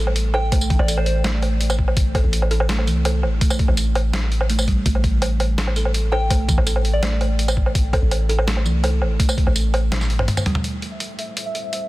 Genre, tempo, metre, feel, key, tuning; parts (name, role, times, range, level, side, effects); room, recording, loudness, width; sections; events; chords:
half-time drum and bass; 166 BPM; 4/4; half-time; A minor; A4 = 440 Hz
buzzing kalimba; arpeggios; 0.0-10.6 s; E3 to A4; -27 LUFS; right 3 dB; dub echo
long sustained 808-style bass; bass; 0.0-10.3 s; A1 to C2; -20 LUFS; equal
boom bap sampler-style drum kit; drums; 0.1-11.8 s; hi-hat, snare drum, tambourine, toms, woodblock; -24 LUFS; equal
soft synth bell; melody; 0.3-1.1, 6.1-7.3 s; C5 to G5; -29 LUFS; left 1 dB; chorus, dub echo
electronic kick drum; drums; 0.5-9.4 s; -19 LUFS; equal
dark analog pad; sustained chords; 10.6-11.9 s; A3 to E5; -39 LUFS; equal; chorus, vintage 12-bit sampler grit, sidechain pumping
pulsing gated texture; texture; 10.9-11.9 s; E5; -28 LUFS; equal; chorus, built-in reverb
little or no reverb; dense, heavily limited modern master; -17 LUFS; side -18 dB against mid
0.0-10.6 A section; 10.6-11.9 B section
drop 0.0-10.6; drum fill 9.9-10.6
0.0 N.C.; 10.6 Am